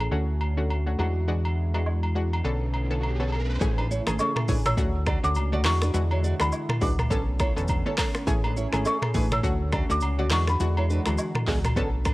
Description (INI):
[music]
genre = afrobeats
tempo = 103 BPM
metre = 4/4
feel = swing 58% on 16ths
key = A major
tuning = A4 = 444 Hz
[part]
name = analog pluck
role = accompaniment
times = 0.0-12.1 s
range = D3 to A4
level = -31 LUFS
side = left 1 dB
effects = chorus, low-pass filter
[part]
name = warm analog pad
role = sustained chords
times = 0.0-12.1 s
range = C#3 to G#4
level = -35 LUFS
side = equal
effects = chorus, low-pass filter
[part]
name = fingered electric bass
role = bass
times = 0.0-12.1 s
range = E1 to E2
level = -26 LUFS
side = equal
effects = none
[part]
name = agogo bells and woodblock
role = percussion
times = 0.0-12.1 s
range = none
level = -35 LUFS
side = equal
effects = none
[part]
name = riser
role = sound effects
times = 2.3-3.6 s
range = none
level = -39 LUFS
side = right 2 dB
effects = none
[part]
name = afro-pop drum kit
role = drums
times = 3.6-12.1 s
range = finger snaps, handclaps, hi-hat, kick drum, rim click, shaker, toms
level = -27 LUFS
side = equal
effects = overdrive
[part]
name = nylon-string guitar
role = riff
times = 3.8-12.1 s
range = B3 to D5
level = -33 LUFS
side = right 3 dB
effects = digital delay
[part]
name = marimba with medium mallets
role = melody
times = 4.2-12.1 s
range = B5 to E6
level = -30 LUFS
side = equal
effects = digital delay
[sound]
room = little or no reverb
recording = worn, warbling old tape, cassette tape, warbly pitch drift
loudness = -23 LUFS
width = side -19 dB against mid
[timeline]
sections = 0.0-3.6 A section; 3.6-12.1 B section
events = riser 2.3-3.6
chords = 0.1 Dmaj7; 1.0 E9; 2.4 Bm9; 3.6 Amaj7; 4.8 Dmaj7; 5.7 E9; 7.1 Bm9; 8.3 Amaj7; 9.4 Dmaj7; 10.3 E9